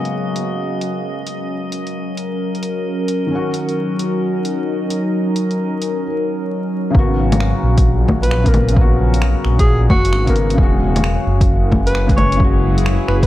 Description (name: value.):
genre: future garage.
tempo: 132 BPM.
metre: 4/4.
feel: swing 65% on 16ths.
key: G# minor.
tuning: A4 = 441 Hz.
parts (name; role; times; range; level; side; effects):
felt-muted upright piano; accompaniment; 0.0-13.3 s; C#3 to B4; -23 LUFS; left 2 dB; sidechain pumping, tape echo.
warbly tape-like pad; sustained chords; 0.0-13.3 s; F#3 to A#4; -22 LUFS; equal; chorus, built-in reverb, phaser, sidechain pumping.
drifting glass-harmonics texture; texture; 0.0-6.0 s; D#5; -32 LUFS; right 4 dB; chorus, built-in reverb.
deep house drum kit; drums; 0.1-13.3 s; bongos, finger snaps, hi-hat; -22 LUFS; left 1 dB; low-pass filter on hats, vintage 12-bit sampler grit, small room ambience, low-pass filter on perc, low-pass filter on snare.
swelling detuned saw bass; bass; 6.9-13.3 s; E1 to A#1; -16 LUFS; equal; tube saturation, sidechain pumping.
electronic kick drum; drums; 6.9-13.3 s; none; -15 LUFS; equal; vintage 12-bit sampler grit, small room ambience.
breathy alto saxophone; melody; 8.2-13.3 s; F#4 to C#5; -22 LUFS; equal; vintage 12-bit sampler grit, tape echo.
room: light reverb, digital ambience.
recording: vinyl crackle.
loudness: -14 LUFS.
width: side -14 dB against mid.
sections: 0.0-6.9 A section; 6.9-13.3 B section.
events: filter sweep on ambient pad 0.0-6.9.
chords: 0.0 G#m11; 3.3 D#m7; 6.9 G#m11; 10.6 E69.